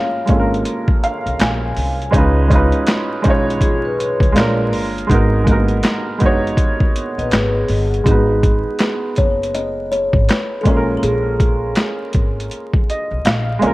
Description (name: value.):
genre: lo-fi hip hop.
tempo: 81 BPM.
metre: 4/4.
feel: swing 62% on 16ths.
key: G# dorian.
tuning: A4 = 438 Hz.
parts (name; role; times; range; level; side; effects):
kalimba; melody; 0.0-0.6, 8.1-12.5 s; G#4 to E#5; -22 LUFS; left 1 dB; none.
warm upright piano; accompaniment; 0.0-13.7 s; G#3 to G#5; -19 LUFS; right 2 dB; cassette tape.
upright bass; bass; 0.3-13.7 s; F#1 to C#2; -20 LUFS; equal; none.
boom bap sampler-style drum kit; drums; 0.3-13.7 s; handclaps, hi-hat, kick drum, snare drum; -17 LUFS; equal; overdrive.
vibraphone with soft mallets; second line; 3.6-8.0 s; E#4 to D#5; -22 LUFS; left 2 dB; analog delay.
room: light reverb, studio reverb.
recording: vinyl crackle.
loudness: -14 LUFS.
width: side -19 dB against mid.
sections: 0.0-8.1 A section; 8.1-13.7 B section.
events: upright piano fill 0.7-2.1, 12.5-13.7.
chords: 0.0 A#m7; 2.1 C#9; 4.4 A#7; 5.1 G#m7; 10.7 A#m7.